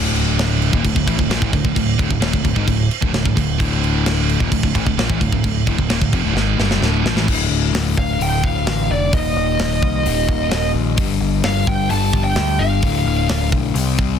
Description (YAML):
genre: heavy metal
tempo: 130 BPM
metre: 4/4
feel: straight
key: D phrygian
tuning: A4 = 436 Hz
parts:
  - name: scooped high-gain guitar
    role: riff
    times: 0.0-7.3 s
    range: D2 to G#3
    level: -22 LUFS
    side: right 10 dB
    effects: distortion
  - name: sludgy distorted guitar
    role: riff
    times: 0.0-14.2 s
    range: D2 to C4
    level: -22 LUFS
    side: left 12 dB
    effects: overdrive
  - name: growling picked electric bass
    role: bass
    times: 0.0-14.2 s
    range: D1 to D2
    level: -21 LUFS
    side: equal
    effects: overdrive
  - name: tight metal drum kit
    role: drums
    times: 0.2-14.1 s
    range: crash cymbal, hi-hat, kick drum, snare drum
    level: -20 LUFS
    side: equal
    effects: soft clipping on kick, soft clipping on snare
  - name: bluesy overdriven lead guitar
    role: melody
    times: 8.0-13.5 s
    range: D5 to A5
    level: -22 LUFS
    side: right 4 dB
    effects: distortion, tape echo
room: small room ambience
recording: dense, heavily limited modern master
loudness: -15 LUFS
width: side -8 dB against mid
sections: 0.0-7.3 A section; 7.3-14.2 B section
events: drum fill 6.4-7.3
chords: 0.0 Dm; 9.1 Eb5; 11.0 G5; 12.8 Dm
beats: 0.39 0.85 1.30 | 1.76 2.22 2.68 3.14 | 3.60 4.06 4.52 4.98 | 5.44 5.90 6.36 6.82 | 7.28 7.74 8.20 8.66 | 9.13 9.59 10.05 10.51 | 10.98 11.44 11.90 12.37 | 12.83 13.29 13.76